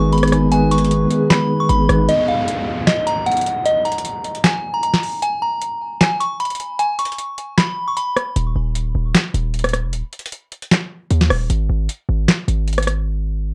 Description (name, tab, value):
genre	hip hop, trap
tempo	153 BPM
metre	4/4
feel	half-time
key	unclear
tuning	A4 = 439 Hz
part	delicate synth tine bell	melody	0.0-8.3 s	Eb5 to Db6	-22 LUFS	equal	chorus, tape echo
part	mellow tine electric piano	accompaniment	0.0-2.1 s	Eb3 to Cb5	-18 LUFS	equal	none
part	ethereal airy pad	sustained chords	0.0-2.1 s	Cb4 to Ab4	-30 LUFS	equal	ensemble chorus, built-in reverb
part	hard-hitting 808-style bass	bass	0.0-2.1, 8.4-13.5 s	Eb1 to Eb2	-21 LUFS	equal	none
part	booming analog drum machine	drums	0.1-13.0 s	handclaps, hi-hat, rim click, snare drum	-20 LUFS	equal	none
part	downlifter	sound effects	2.1-5.2 s	none	-31 LUFS	equal	none
room	moderate small room reverb, RT60 0.6 s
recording	cassette tape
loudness	-18 LUFS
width	mono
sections	0.0-2.1 A section; 2.1-13.5 B section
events	break 2.1-8.4, 13.1-13.5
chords	0.0 Abm; 2.1 N.C.